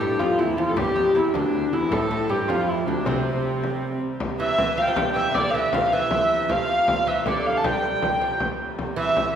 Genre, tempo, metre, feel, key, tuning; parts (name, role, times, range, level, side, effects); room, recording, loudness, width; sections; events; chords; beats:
medieval dance; 105 BPM (dotted quarters); 6/8; straight; C major; A4 = 440 Hz
dark hurdy-gurdy; melody; 0.0-9.4 s; C4 to A5; -22 LUFS; equal
dark viola da gamba; second line; 0.0-4.0 s; D2 to C3; -28 LUFS; left 2 dB
lute; second line; 0.0-9.4 s; D2 to G3; -29 LUFS; right 3 dB
warm hurdy-gurdy; drone; 0.0-9.4 s; C3 to G3; -34 LUFS; right 3 dB
frame drum; percussion; 0.2-9.3 s; -29 LUFS; left 2 dB
wet scoring stage reverb, RT60 1.7 s; recorded in a church or concert hall; -20 LUFS; side -8 dB against mid
0.0-4.2 A section; 4.2-9.4 B section
0.19 | 0.77 1.34 | 1.91 2.49 | 3.06 3.63 | 4.21 4.78 | 5.35 5.92 | 6.50 7.07 | 7.64 8.21 | 8.78